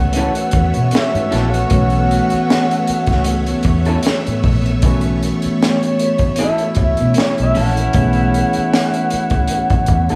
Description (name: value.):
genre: R&B, neo-soul.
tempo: 77 BPM.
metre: 4/4.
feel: swing 55% on 16ths.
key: unclear.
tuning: A4 = 440 Hz.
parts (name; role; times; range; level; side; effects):
gliding portamento lead; melody; 0.0-10.2 s; C#5 to F#5; -23 LUFS; equal; chorus, phaser.
barky tine electric piano; accompaniment; 0.0-10.2 s; E3 to G#4; -23 LUFS; equal; overdrive, phaser.
string machine, violins; sustained chords; 0.0-10.2 s; A3 to E5; -27 LUFS; equal; ensemble chorus.
vintage muted fingered electric bass; bass; 0.0-10.2 s; A1 to B2; -20 LUFS; equal; none.
dark horn section; stabs; 0.1-10.2 s; A3 to F#4; -28 LUFS; equal; slapback echo.
crunchy breakbeat drum kit; drums; 0.1-10.2 s; hi-hat, kick drum, snare drum; -21 LUFS; equal; none.
electric guitar through a small old amp; second line; 0.2-10.2 s; C#4 to A4; -26 LUFS; equal; none.
room: moderate large studio reverb, RT60 1.0 s.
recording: band playing live in one room.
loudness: -16 LUFS.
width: mono.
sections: 0.0-10.2 A section.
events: none.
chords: 0.0 B9sus4.